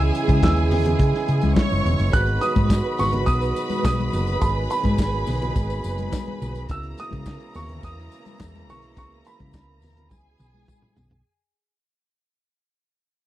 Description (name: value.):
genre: disco.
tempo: 105 BPM.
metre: 4/4.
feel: straight.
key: unclear.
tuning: A4 = 439 Hz.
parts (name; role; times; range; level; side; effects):
dark concert grand piano; melody; 0.0-10.9 s; B5 to F#6; -28 LUFS; right 2 dB; none.
warm studio string section; second line; 0.0-11.2 s; A#3 to C#6; -29 LUFS; right 2 dB; none.
bright brass ensemble; sustained chords; 0.0-11.2 s; B2 to G#4; -29 LUFS; right 3 dB; none.
hollow-body short-scale fingered electric bass; bass; 0.0-11.2 s; E1 to C#3; -23 LUFS; equal; none.
warm soul drum kit; drums; 0.0-11.2 s; handclaps, hi-hat, kick drum, snare drum, toms; -23 LUFS; equal; none.
congas; percussion; 0.2-11.1 s; none; -29 LUFS; left 4 dB; none.
tambourine; percussion; 2.1-11.2 s; none; -46 LUFS; left 16 dB; none.
room: little or no reverb.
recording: dry, close 1970s-style studio recording, lossy compression artefacts.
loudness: -19 LUFS.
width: side -14 dB against mid.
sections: 0.0-11.3 A section.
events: fade-out 0.0-11.3; drum fill 10.1-11.3.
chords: 0.0 C#m7; 2.1 G#m7; 6.7 C#m7.